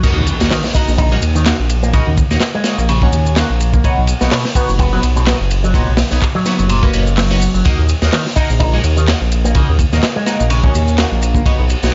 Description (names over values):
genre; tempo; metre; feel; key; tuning
breakbeat, breaks; 126 BPM; 4/4; swing 56% on 16ths; Eb minor; A4 = 440 Hz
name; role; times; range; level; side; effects
electric guitar with an envelope filter; riff; 0.0-11.4 s; Bb2 to Eb4; -23 LUFS; equal; tube saturation, dub echo
band-passed chord stab; stabs; 0.0-11.9 s; Bb3 to Gb5; -25 LUFS; equal; phaser, subtle chorus, cassette tape, dub echo
dark detuned saw bass; bass; 0.0-11.9 s; F#1 to Eb2; -17 LUFS; equal; tube saturation
crunchy breakbeat drum kit; drums; 0.0-11.9 s; crash cymbal, hi-hat, kick drum, ride cymbal, snare drum; -18 LUFS; equal; none
electronic shaker and handclaps; drums; 0.0-11.9 s; none; -27 LUFS; equal; none
impact; sound effects; 0.0-1.9 s; none; -26 LUFS; equal; none
room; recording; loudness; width
small room ambience; nothing above 7.6 kHz; -14 LUFS; mono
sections
0.0-11.9 A section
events
drop 0.0-11.9; impact 0.0-1.9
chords
0.0 Ebm; 3.8 Badd9; 7.7 Ebm